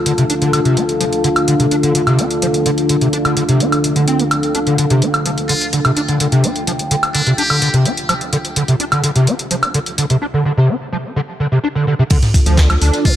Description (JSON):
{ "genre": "acid house", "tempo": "127 BPM", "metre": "4/4", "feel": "straight", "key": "D minor pentatonic", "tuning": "A4 = 440 Hz", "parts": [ { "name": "dark analog pad", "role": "sustained chords", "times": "0.0-13.2 s", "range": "D3 to A4", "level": "-20 LUFS", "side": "equal", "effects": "chorus, sidechain pumping" }, { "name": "warbly tape-like pad", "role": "texture", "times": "0.0-13.2 s", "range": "D4 to A5", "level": "-22 LUFS", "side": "equal", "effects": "chorus, built-in reverb, phaser, sidechain pumping" }, { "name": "overdriven acid bass", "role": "riff", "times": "0.1-13.1 s", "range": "C3 to D4", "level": "-16 LUFS", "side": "equal", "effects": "ensemble chorus, cassette tape, tape echo" }, { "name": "booming analog drum machine", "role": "drums", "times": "0.1-13.1 s", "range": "crash cymbal, handclaps, hi-hat, toms, woodblock", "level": "-19 LUFS", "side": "equal", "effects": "none" }, { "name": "trumpet with metal mute", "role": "melody", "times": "5.5-7.7, 13.1-13.2 s", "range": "D4 to G4", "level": "-21 LUFS", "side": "equal", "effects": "tape echo" }, { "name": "round analog bass", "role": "bass", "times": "12.1-13.2 s", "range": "D2", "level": "-14 LUFS", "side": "equal", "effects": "sidechain pumping" }, { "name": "electronic kick drum", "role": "drums", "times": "12.1-13.1 s", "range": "none", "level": "-12 LUFS", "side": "equal", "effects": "none" }, { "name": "jazz brush drum kit", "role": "drums", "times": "12.1-13.2 s", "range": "hi-hat, snare drum", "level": "-31 LUFS", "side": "right 2 dB", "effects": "none" } ], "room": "moderate lush hall reverb, RT60 2.1 s", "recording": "none", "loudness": "-13 LUFS", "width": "side -11 dB against mid", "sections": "0.0-12.1 A section; 12.1-13.2 B section", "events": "drop 12.1-13.2", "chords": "0.0 Dm" }